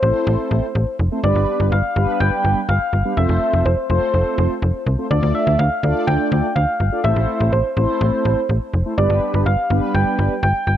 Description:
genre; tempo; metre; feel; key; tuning
synth-pop; 124 BPM; 4/4; straight; A minor; A4 = 443 Hz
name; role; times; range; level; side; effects
soft struck synth lead; melody; 0.0-10.8 s; C5 to G5; -21 LUFS; left 1 dB; chorus, slapback echo
mellow synth brass; accompaniment; 0.0-10.3 s; G3 to D5; -23 LUFS; equal; chorus, phaser
slap-like FM bass; bass; 0.0-10.8 s; F1 to D2; -17 LUFS; equal; none
room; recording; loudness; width
light reverb, digital ambience; dark, warm production; -16 LUFS; side -11 dB against mid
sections
0.0-10.8 A section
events
none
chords
0.0 Am; 1.2 G; 3.2 F; 5.1 Dm; 7.0 Am; 9.0 G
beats
0.27 0.75 | 1.24 1.72 2.20 2.69 | 3.17 3.65 4.14 4.62 | 5.11 5.59 6.07 6.56 | 7.04 7.53 8.01 8.49 | 8.98 9.46 9.95 10.43

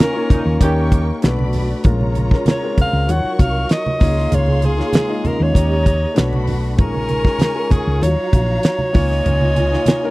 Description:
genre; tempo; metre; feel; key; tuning
lush 1970s-style soul; 97 BPM; 4/4; straight; Db major; A4 = 442 Hz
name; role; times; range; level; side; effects
breathy alto saxophone; melody; 0.0-10.1 s; Ab4 to Gb5; -22 LUFS; equal; none
warm studio string section; second line; 0.0-10.1 s; D4 to Db6; -27 LUFS; right 1 dB; none
warm grand piano; accompaniment; 0.0-10.1 s; F3 to Eb5; -23 LUFS; left 3 dB; none
damped 70s drum kit; drums; 0.0-10.0 s; hi-hat, kick drum, snare drum; -14 LUFS; equal; none
vibraphone with hard mallets; texture; 0.0-0.9, 5.0-10.1 s; Ab3 to F4; -30 LUFS; right 2 dB; none
warm horn section; stabs; 0.3-1.1 s; Bb2 to G4; -25 LUFS; right 2 dB; none
hollow-body short-scale fingered electric bass; bass; 0.3-9.7 s; Bb1 to Eb2; -18 LUFS; equal; none
congas; percussion; 0.3-10.0 s; none; -24 LUFS; right 2 dB; none
room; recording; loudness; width
little or no reverb; dry, close 1970s-style studio recording; -14 LUFS; side -20 dB against mid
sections
0.0-10.1 A section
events
band accent 0.0-1.8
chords
0.0 Db69; 0.6 Eb7; 1.2 Cbm7; 1.8 Bbm7; 3.1 Ebm9; 4.0 Db69; 5.6 Eb7; 6.2 Cbm7; 6.8 Bbm7; 8.0 Ebm9; 8.9 Db69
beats
0.00 0.61 1.23 | 1.85 2.47 3.08 3.70 | 4.32 4.93 5.55 6.17 | 6.79 7.41 8.02 8.64 | 9.26 9.88

